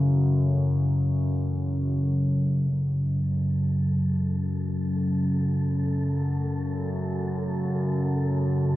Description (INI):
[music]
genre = dark ambient drone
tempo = free time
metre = none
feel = none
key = F# minor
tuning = A4 = 440 Hz
[part]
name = deep dark ambient pad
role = sustained chords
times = 0.0-2.7 s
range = C#4 to A4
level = -43 LUFS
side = right 1 dB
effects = none
[part]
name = analog drone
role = drone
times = 0.0-8.8 s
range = F#2 to C#3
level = -23 LUFS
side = equal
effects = chorus
[part]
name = wind-like tuned noise texture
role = texture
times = 3.7-8.8 s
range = A3 to A4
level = -39 LUFS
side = right 1 dB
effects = built-in reverb
[sound]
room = wet huge ambient reverb, RT60 7.9 s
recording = worn, warbling old tape, cassette tape, warbly pitch drift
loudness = -23 LUFS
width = side -16 dB against mid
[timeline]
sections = 0.0-2.7 A section; 2.7-8.8 B section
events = fade-in on synth texture 2.7-8.8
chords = 0.0 F#m